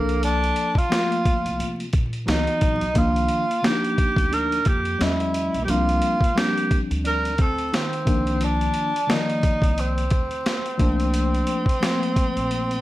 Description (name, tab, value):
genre	hip hop, jazz-hop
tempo	88 BPM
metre	4/4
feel	swing 58% on 16ths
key	C dorian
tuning	A4 = 439 Hz
part	breathy tenor saxophone	melody	0.0-12.8 s	Bb3 to Bb4	-24 LUFS	right 1 dB	slapback echo
part	mellow tine electric piano	accompaniment	0.0-12.8 s	D3 to D#5	-25 LUFS	left 2 dB	medium stereo tremolo
part	upright bass	bass	0.0-12.8 s	Bb1 to C3	-27 LUFS	equal	none
part	boom bap sampler-style drum kit	drums	0.1-12.8 s	hi-hat, kick drum, snare drum	-24 LUFS	equal	none
part	mellow electric guitar	second line	2.3-12.8 s	Eb3 to D4	-30 LUFS	right 3 dB	none
room	light reverb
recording	vinyl crackle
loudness	-19 LUFS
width	side -16 dB against mid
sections	0.0-12.8 A section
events	none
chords	0.0 C13sus4; 2.3 Dbm11; 3.0 Cm11; 5.0 Emaj13; 5.7 Cm11; 10.8 Bbmaj9